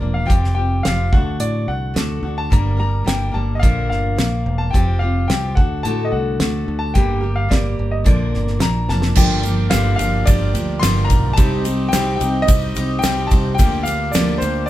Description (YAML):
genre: folk rock and heartland rock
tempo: 108 BPM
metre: 4/4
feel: straight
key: G minor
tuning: A4 = 440 Hz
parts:
  - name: clear concert grand piano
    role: melody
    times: 0.0-14.7 s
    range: C5 to C6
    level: -24 LUFS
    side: left 2 dB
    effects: none
  - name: picked steel-string acoustic guitar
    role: accompaniment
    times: 0.0-14.7 s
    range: G2 to Bb4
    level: -23 LUFS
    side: left 1 dB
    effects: none
  - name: fingered electric bass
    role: bass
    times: 0.0-14.7 s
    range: E1 to A2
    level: -21 LUFS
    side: right 1 dB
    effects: none
  - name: damped 70s drum kit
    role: drums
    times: 0.3-14.5 s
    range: crash cymbal, hi-hat, kick drum, ride cymbal, snare drum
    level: -18 LUFS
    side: equal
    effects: none
  - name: hand-pumped harmonium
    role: sustained chords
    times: 9.2-14.7 s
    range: Eb4 to Eb5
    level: -30 LUFS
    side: right 2 dB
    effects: none
  - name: egg shaker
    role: percussion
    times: 9.2-14.5 s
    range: none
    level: -33 LUFS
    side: right 8 dB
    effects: none
room: moderate studio reverb, RT60 0.9 s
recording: band playing live in one room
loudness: -15 LUFS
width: side -14 dB against mid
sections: 0.0-9.2 A section; 9.2-14.7 B section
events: drum fill 8.9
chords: 0.3 Fsus2; 1.1 D; 2.5 Gm; 3.6 Bb; 4.7 Fsus2; 5.6 D; 7.0 Gm; 8.1 Bb; 9.2 Gm7; 11.4 Cm; 13.6 Gm7/D